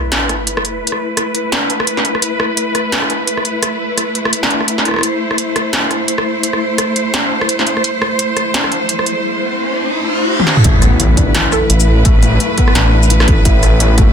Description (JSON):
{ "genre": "half-time drum and bass", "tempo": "171 BPM", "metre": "4/4", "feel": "swing 57% on 16ths, half-time", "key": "A minor", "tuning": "A4 = 441 Hz", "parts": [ { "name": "rich symphonic cello section", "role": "sustained chords", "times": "0.0-14.1 s", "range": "A3 to C5", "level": "-18 LUFS", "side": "equal", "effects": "sidechain pumping, low-pass filter" }, { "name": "sub drop, riser and impact", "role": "sound effects", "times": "0.0-0.8, 8.7-12.0 s", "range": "none", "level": "-19 LUFS", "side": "equal", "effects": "none" }, { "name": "industrial drum kit", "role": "drums", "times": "0.1-14.1 s", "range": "hi-hat, rim click, shaker, snare drum, toms", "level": "-15 LUFS", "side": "equal", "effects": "none" }, { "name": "felt-muted upright piano", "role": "arpeggios", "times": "10.6-14.1 s", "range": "E3 to A4", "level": "-20 LUFS", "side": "left 5 dB", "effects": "vintage 12-bit sampler grit, ping-pong delay" }, { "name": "dark detuned saw bass", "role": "bass", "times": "10.6-14.1 s", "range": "A1", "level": "-12 LUFS", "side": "equal", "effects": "none" }, { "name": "electronic kick drum", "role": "drums", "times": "10.6-14.1 s", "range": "none", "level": "-12 LUFS", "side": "equal", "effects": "distortion" }, { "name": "hollow square pluck", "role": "melody", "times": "11.5-11.8 s", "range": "A4", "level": "-24 LUFS", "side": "right 5 dB", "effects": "analog chorus, ping-pong delay" } ], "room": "light reverb", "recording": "dense, heavily limited modern master", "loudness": "-12 LUFS", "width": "side -7 dB against mid", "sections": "0.0-10.6 A section; 10.6-14.1 B section", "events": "impact 0.0-0.8, 10.6-12.1; filter sweep on cello section 0.0-10.6; riser 8.7-10.6; drum fill 10.4; drop 10.6-14.1", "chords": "0.0 A5", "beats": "0.12 0.47 | 0.82 1.17 1.52 1.87 | 2.23 2.58 2.93 3.28 | 3.63 3.98 4.33 4.68 | 5.03 5.38 5.73 6.08 | 6.44 6.79 7.14 7.49 | 7.84 8.19 8.54 8.89 | 9.24 9.59 9.94 10.29 | 10.65 11.00 11.35 11.70 | 12.05 12.40 12.75 13.10 | 13.45 13.80" }